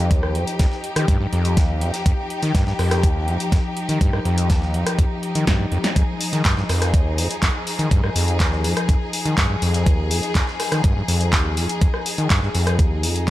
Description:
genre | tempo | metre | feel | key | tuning
acid house | 123 BPM | 4/4 | straight | F minor | A4 = 440 Hz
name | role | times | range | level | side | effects
clear studio string section | sustained chords | 0.0-13.3 s | F3 to Ab4 | -26 LUFS | left 2 dB | sidechain pumping
overdriven acid bass | riff | 0.0-13.3 s | Eb2 to Eb3 | -22 LUFS | equal | distortion, tube saturation
breakbeat sampler-style drum kit | drums | 0.1-13.3 s | hi-hat, snare drum | -35 LUFS | right 1 dB | high-pass filter on hats, high-pass filter on snare
electronic kick drum | drums | 0.1-13.3 s | none | -18 LUFS | equal | none
punchy analog drum machine | drums | 0.1-13.3 s | handclaps, hi-hat, rim click, snare drum | -24 LUFS | equal | none
room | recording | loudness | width
light reverb | none | -17 LUFS | side -15 dB against mid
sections
0.0-13.3 A section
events
drum fill 5.5-6.0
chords
0.0 Fm7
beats
| 0.11 0.60 1.08 1.57 | 2.06 2.55 3.04 3.52 | 4.01 4.50 4.99 5.47 | 5.96 6.45 6.94 7.43 | 7.91 8.40 8.89 9.38 | 9.87 10.35 10.84 11.33 | 11.82 12.30 12.79 13.28

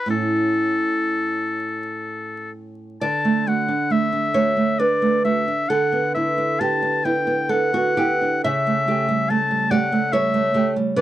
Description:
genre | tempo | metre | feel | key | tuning
romantic duo for oboe and classical guitar | 60-72 BPM | 3/4 | rubato | D major | A4 = 440 Hz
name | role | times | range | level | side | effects
clear oboe | melody | 0.0-11.0 s | A4 to A5 | -22 LUFS | left 3 dB | none
nylon-string guitar | accompaniment | 0.0-11.0 s | A2 to E5 | -20 LUFS | right 2 dB | none
room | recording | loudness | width
light reverb | dry, close 1970s-style studio recording, vinyl crackle | -18 LUFS | side -13 dB against mid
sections
0.0-3.0 A section; 3.0-11.0 B section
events
none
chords
0.1 A; 3.0 D; 5.7 Em7/D; 8.4 A7/C#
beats
| 0.12 1.08 2.06 | 3.03 3.92 4.80 | 5.69 6.59 7.50 | 8.44 9.30 10.13 | 10.98

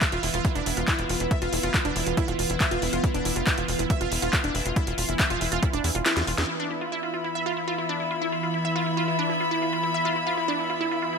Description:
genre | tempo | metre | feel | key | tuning
psychedelic trance | 139 BPM | 4/4 | straight | unclear | A4 = 440 Hz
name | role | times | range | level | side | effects
evolving wavetable pad | sustained chords | 0.0-11.2 s | E3 to E4 | -31 LUFS | right 1 dB | phaser, built-in reverb, vintage 12-bit sampler grit, sidechain pumping
wide unison pluck | riff | 0.0-11.2 s | D4 to E5 | -28 LUFS | moving between left 3 dB and right 6 dB | auto-pan, vintage 12-bit sampler grit, sidechain pumping, dub echo
drum and bass drum kit | drums | 0.0-6.6 s | crash cymbal, handclaps, hi-hat, snare drum | -28 LUFS | equal | overdrive, low-pass filter on hats, low-pass filter on cymbals, low-pass filter on snare, low-pass filter on room
electronic kick drum | drums | 0.0-5.7 s | none | -25 LUFS | equal | none
tight sequencer bass | bass | 0.1-6.4 s | E1 to E2 | -30 LUFS | equal | none
clear studio string section | texture | 6.5-11.2 s | B3 to B5 | -28 LUFS | left 3 dB | sidechain pumping
room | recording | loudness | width
moderate lush hall reverb, RT60 2.2 s | none | -23 LUFS | side -5 dB against mid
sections
0.0-6.5 A section; 6.5-11.2 B section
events
drop 0.0-6.5; kick drops out 6.1-6.5; drum fill 6.1-6.5; band accent 6.4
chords
0.0 E5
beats
0.01 0.45 0.88 | 1.31 1.74 2.17 2.60 | 3.04 3.47 3.90 4.33 | 4.76 5.20 5.63 6.06 | 6.49 6.92 7.35 7.79 | 8.22 8.65 9.08 9.51 | 9.94 10.38 10.81

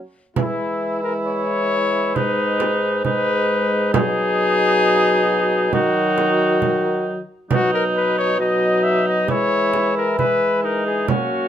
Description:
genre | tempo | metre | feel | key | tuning
classical, renaissance-style consort dance | 67 BPM | 4/4 | straight | unclear | A4 = 440 Hz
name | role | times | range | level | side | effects
warm cor anglais | second line | 0.0-11.5 s | C#4 to E4 | -23 LUFS | right 3 dB | none
mellow trombone | accompaniment | 0.0-11.5 s | F#3 to A#3 | -25 LUFS | left 1 dB | none
mellow cornet | melody | 0.4-11.5 s | E4 to E5 | -21 LUFS | left 4 dB | none
dark bassoon | bass | 0.4-11.5 s | G#2 to F#3 | -22 LUFS | right 1 dB | none
frame drum | percussion | 0.4-11.5 s | none | -23 LUFS | right 5 dB | none
room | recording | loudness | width
light reverb | close, detailed microphones | -16 LUFS | side -10 dB against mid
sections
0.4-11.5 A section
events
none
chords
0.4 E; 2.2 G#m; 3.9 B; 5.7 D#m; 7.5 B; 9.3 E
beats
| 0.36 1.26 2.15 3.05 | 3.94 4.84 5.74 6.62 | 7.51 8.40 9.29 10.18 | 11.08

